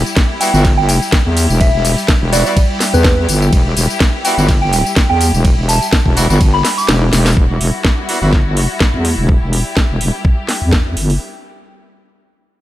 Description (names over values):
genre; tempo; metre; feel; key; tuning
bass house; 125 BPM; 4/4; swing 54% on 16ths; E minor; A4 = 440 Hz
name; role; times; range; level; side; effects
rich symphonic string section; sustained chords; 0.0-11.2 s; G3 to G4; -23 LUFS; left 2 dB; sidechain pumping
wobble bass; bass; 0.0-11.2 s; E1 to E2; -14 LUFS; equal; chorus, tube saturation, sidechain pumping
garage drum kit; drums; 0.1-11.2 s; hi-hat, ride cymbal, snare drum, tambourine, toms; -18 LUFS; equal; none
electronic kick drum; drums; 0.2-10.8 s; none; -13 LUFS; equal; none
soft synth bell; melody; 0.4-7.1 s; B4 to D6; -20 LUFS; right 1 dB; chorus, phaser, vintage 12-bit sampler grit, dub echo
bright horn section; stabs; 0.4-8.3 s; G3 to F#4; -24 LUFS; right 1 dB; vintage 12-bit sampler grit, sidechain pumping, dub echo
room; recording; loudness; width
little or no reverb; none; -11 LUFS; side -14 dB against mid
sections
0.0-7.4 A section; 7.4-11.2 B section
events
drop 0.0-7.4; kick drops out 6.9-7.4; drum fill 6.9-7.4; filter sweep on wobble bass 7.4-11.2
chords
0.0 Em; 7.4 Emadd9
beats
0.17 0.65 1.13 | 1.61 2.09 2.57 3.05 | 3.53 4.01 4.49 4.97 | 5.45 5.93 6.41 6.89 | 7.37 7.85 8.33 8.81 | 9.29 9.77 10.25 10.73